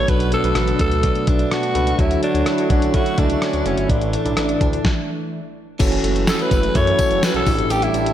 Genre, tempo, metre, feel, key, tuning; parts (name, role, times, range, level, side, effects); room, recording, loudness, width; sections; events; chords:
1980s-style pop; 126 BPM; 4/4; straight; A4 = 440 Hz
breathy alto saxophone; melody; 0.0-8.1 s; C#4 to C#5; -22 LUFS; equal; tape echo, slapback echo
tine electric piano; accompaniment; 0.0-8.1 s; A2 to E5; -23 LUFS; left 1 dB; medium stereo tremolo, slapback echo
phased analog pad; sustained chords; 0.0-8.1 s; D3 to C#5; -28 LUFS; right 1 dB; phaser, chorus
direct-recorded clean electric guitar; riff; 0.0-8.1 s; E3 to G4; -27 LUFS; right 5 dB; ensemble chorus, slapback echo
smooth synth bass; bass; 0.0-8.1 s; F#1 to F#2; -23 LUFS; equal
clean 12-bit digital drum machine; drums; 0.1-8.1 s; crash cymbal, hi-hat, kick drum, rim click, snare drum; -21 LUFS; equal
tambourine; percussion; 5.8-8.1 s; -38 LUFS; left 6 dB
moderate lush hall reverb, RT60 1.6 s; big arena sound, faint mains hum; -16 LUFS; side -11 dB against mid
0.0-5.8 A section; 5.8-8.1 B section
stop 4.8-5.8
0.0 Bm7; 2.0 Dmaj7; 3.9 Asus4; 5.8 F#m7; 7.5 A7sus4